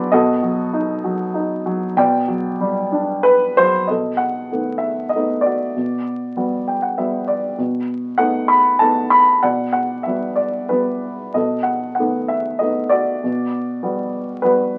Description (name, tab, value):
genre	classical, lyrical solo piano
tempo	96 BPM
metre	3/4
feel	uneven beats, rubato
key	unclear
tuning	A4 = 441 Hz
part	dark baby grand piano	solo	0.0-14.8 s	B2 to B5	-19 LUFS	equal	none
room	moderate studio reverb, RT60 0.5 s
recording	very old 78 rpm record, vinyl crackle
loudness	-19 LUFS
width	mono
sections	0.0-3.9 A section; 3.9-14.8 B section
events	grand piano fill 6.4-7.6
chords	0.1 B7; 2.0 Gmaj7/B; 3.9 B7; 5.8 Gmaj7/B; 7.6 B7; 9.4 Gmaj7/B; 11.4 B7; 13.2 Gmaj7/B